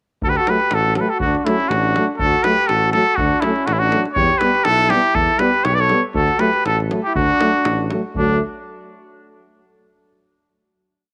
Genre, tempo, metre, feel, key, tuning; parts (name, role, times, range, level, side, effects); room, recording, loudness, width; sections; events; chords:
balkan folk, Balkan brass band; 121 BPM; 2/4; swing 54% on 16ths; D major; A4 = 440 Hz
cornet with straight mute; melody; 0.2-8.4 s; D4 to D5; -20 LUFS; equal
mellow tuba; bass; 0.2-8.4 s; A1 to E2; -24 LUFS; equal
davul; percussion; 0.2-8.4 s; -30 LUFS; equal
mellow flugelhorn; second line; 0.3-8.4 s; A3 to B4; -27 LUFS; equal
mellow euphonium; accompaniment; 0.5-8.4 s; F#3 to G3; -30 LUFS; equal
warm French horn; accompaniment; 0.5-8.4 s; A3 to B3; -27 LUFS; equal
light reverb, small room reverb; -17 LUFS; mono
0.2-8.2 A section; 8.2-9.2 final chord
0.2 D; 4.2 Em; 6.2 D